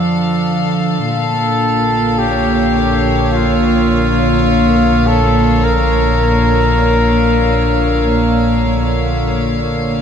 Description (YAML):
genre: ambient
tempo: 52 BPM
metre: 4/4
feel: straight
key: unclear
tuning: A4 = 440 Hz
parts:
  - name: rich chamber string section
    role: sustained chords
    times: 0.0-10.0 s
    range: Bb2 to F5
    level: -14 LUFS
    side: left 1 dB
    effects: none
  - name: deep rumbling drone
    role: bass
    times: 0.0-10.0 s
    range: Bb1 to F2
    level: -19 LUFS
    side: equal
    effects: built-in reverb
  - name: analog drone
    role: drone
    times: 0.0-10.0 s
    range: D3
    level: -22 LUFS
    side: equal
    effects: chorus
  - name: glass harmonica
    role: texture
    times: 0.0-10.0 s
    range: E6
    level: -31 LUFS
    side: right 2 dB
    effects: none
  - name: clear flugelhorn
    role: melody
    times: 1.0-9.1 s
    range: F4 to Bb4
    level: -17 LUFS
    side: equal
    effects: analog delay
room: wet plate reverb, RT60 2.5 s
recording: echo-heavy mix, cassette tape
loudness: -11 LUFS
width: side -7 dB against mid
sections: 0.0-10.0 A section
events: none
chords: 0.0 F6; 1.0 Bbm